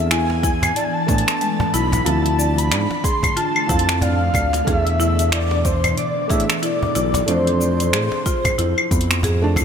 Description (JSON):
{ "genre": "organic downtempo", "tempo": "92 BPM", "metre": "4/4", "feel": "swing 59% on 16ths", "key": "E phrygian dominant", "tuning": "A4 = 440 Hz", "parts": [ { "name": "breathy flute-like synth lead", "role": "melody", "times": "0.0-9.2 s", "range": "C5 to C6", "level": "-22 LUFS", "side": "equal", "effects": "ensemble chorus, ping-pong delay" }, { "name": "felt-muted upright piano", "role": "accompaniment", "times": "0.0-9.6 s", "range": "B2 to F5", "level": "-28 LUFS", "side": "right 2 dB", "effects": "sidechain pumping, ping-pong delay" }, { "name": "ethereal airy pad", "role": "sustained chords", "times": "0.0-9.6 s", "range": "B2 to D4", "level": "-28 LUFS", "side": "right 1 dB", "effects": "ensemble chorus, built-in reverb, vintage 12-bit sampler grit, sidechain pumping" }, { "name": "buzzing marimba with medium hard mallets", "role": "arpeggios", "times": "0.0-9.6 s", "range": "G#3 to D5", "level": "-26 LUFS", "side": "left 3 dB", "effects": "ping-pong delay" }, { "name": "smooth synth bass", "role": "bass", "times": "0.0-9.6 s", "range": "B1 to A2", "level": "-20 LUFS", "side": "equal", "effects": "none" }, { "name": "deep house drum kit", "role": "drums", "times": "0.1-9.6 s", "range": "claves, finger snaps, hi-hat, shaker", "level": "-23 LUFS", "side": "equal", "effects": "none" }, { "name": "cajon", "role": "percussion", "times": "0.3-9.6 s", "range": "none", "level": "-28 LUFS", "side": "right 1 dB", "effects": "none" }, { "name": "electronic kick drum", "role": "drums", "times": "0.4-9.6 s", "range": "none", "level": "-22 LUFS", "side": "equal", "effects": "none" } ], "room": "moderate lush hall reverb, RT60 2.1 s", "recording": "bright 1980s-style digital production", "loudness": "-16 LUFS", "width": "side -7 dB against mid", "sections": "0.0-9.6 A section", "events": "none", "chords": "0.0 E7sus4; 2.1 Dm7; 4.7 E7sus4; 7.3 F6" }